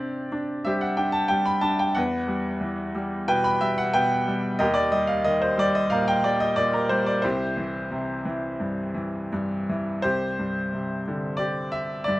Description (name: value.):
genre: classical, lyrical solo piano.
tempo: 91 BPM.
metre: 4/4.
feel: rubato.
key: C lydian.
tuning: A4 = 440 Hz.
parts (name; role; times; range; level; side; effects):
bright baby grand piano; solo; 0.0-12.2 s; C2 to B5; -22 LUFS; equal; none.
room: little or no reverb.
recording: close, detailed microphones.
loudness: -22 LUFS.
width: side -17 dB against mid.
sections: 0.0-10.0 A section; 10.0-12.2 B section.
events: none.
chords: 0.0 Csus2; 2.0 Emadd9; 4.6 Eb; 7.2 C; 10.0 Csus2.